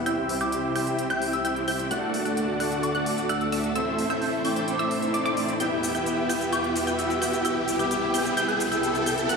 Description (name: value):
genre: EDM, festival progressive house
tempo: 130 BPM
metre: 4/4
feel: straight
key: unclear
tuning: A4 = 440 Hz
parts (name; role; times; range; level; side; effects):
- lush unison pad; sustained chords; 0.0-9.4 s; C2 to E5; -32 LUFS; left 1 dB; chorus
- wide unison pluck; arpeggios; 0.0-9.4 s; D6 to G6; -32 LUFS; equal; vintage 12-bit sampler grit, dub echo
- big supersaw lead; riff; 0.0-9.4 s; A3 to G5; -26 LUFS; equal; low-pass filter, dub echo
- riser; sound effects; 0.0-9.4 s; none; -33 LUFS; right 1 dB; none
- soft synth bell; melody; 0.1-8.9 s; D6 to G6; -32 LUFS; equal; chorus, phaser, dub echo
- electronic hi-hat and shaker; drums; 0.1-9.4 s; none; -35 LUFS; equal; overdrive
room: wet lush hall reverb, RT60 1.8 s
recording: played on a big sound system in a bare room, stone room reverb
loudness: -23 LUFS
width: side -4 dB against mid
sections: 0.0-9.4 A section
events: build-up 0.0-9.4; riser 0.0-9.4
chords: 0.1 C; 1.9 D; 3.8 Am; 5.6 Em; 7.4 C